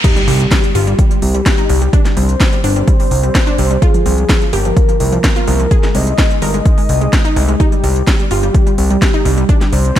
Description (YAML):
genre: progressive house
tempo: 127 BPM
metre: 4/4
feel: straight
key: C minor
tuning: A4 = 440 Hz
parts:
  - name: soft octave-layered synth lead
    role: melody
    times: 0.0-10.0 s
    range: G4 to Eb5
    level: -20 LUFS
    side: left 1 dB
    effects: chorus, phaser, diffuse ambient delay
  - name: wide unison pluck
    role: arpeggios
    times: 0.0-10.0 s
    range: F3 to Bb4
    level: -20 LUFS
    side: equal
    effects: sidechain pumping, diffuse ambient delay
  - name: electronic kick drum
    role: drums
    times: 0.0-10.0 s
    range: none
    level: -13 LUFS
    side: equal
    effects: overdrive
  - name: house drum kit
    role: drums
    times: 0.0-10.0 s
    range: crash cymbal, hi-hat, snare drum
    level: -20 LUFS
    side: equal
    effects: high-pass filter on snare, sidechain pumping on hats, high-pass filter on hats, sidechain pumping on cymbals, high-pass filter on cymbals
  - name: riser, swell and impact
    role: sound effects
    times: 0.0-1.9 s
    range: none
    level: -22 LUFS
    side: equal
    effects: none
  - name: fat analog bass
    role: bass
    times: 0.3-9.9 s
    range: G1 to C2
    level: -14 LUFS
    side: equal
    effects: sidechain pumping
room: light reverb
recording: high-pass filter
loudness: -10 LUFS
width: side -12 dB against mid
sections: 0.0-10.0 A section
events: drop 0.0-10.0; impact 0.0-1.9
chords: 0.0 C5; 3.8 Fmadd9; 5.7 Ab; 7.6 C5